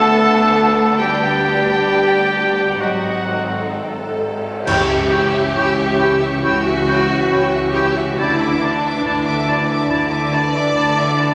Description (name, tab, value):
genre	cinematic, emotional film score for orchestra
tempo	64-71 BPM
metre	4/4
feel	rubato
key	unclear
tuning	A4 = 440 Hz
part	rich chamber violin section	melody	0.0-11.3 s	F#5 to E6	-28 LUFS	equal	none
part	clear oboe	second line	0.0-11.3 s	F#4 to A5	-23 LUFS	equal	none
part	rich studio violin section	second line	0.0-11.3 s	B3 to D6	-26 LUFS	equal	none
part	small flute group	second line	0.0-11.3 s	D5 to D6	-30 LUFS	equal	none
part	rich studio viola section	accompaniment	0.0-11.3 s	D4 to D5	-23 LUFS	equal	none
part	mellow French horn section	sustained chords	0.0-11.3 s	E3 to D4	-23 LUFS	equal	none
part	rich studio cello section	bass	0.0-11.3 s	D2 to D3	-30 LUFS	equal	none
part	rich studio double bass section	bass	0.0-11.3 s	G#1 to D2	-28 LUFS	equal	none
part	cymbal swell, clash cymbals and concert bass drum	percussion	1.0-6.4 s	none	-29 LUFS	equal	none
part	warm clarinet	second line	4.7-11.3 s	E4	-31 LUFS	equal	none
room	wet scoring stage reverb, RT60 2.2 s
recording	none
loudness	-17 LUFS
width	mono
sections	0.0-4.7 A section; 4.7-11.3 B section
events	band accent 4.7-5.6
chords	0.0 Bm/D; 2.8 G#7; 4.7 C#dim; 8.2 Dsus2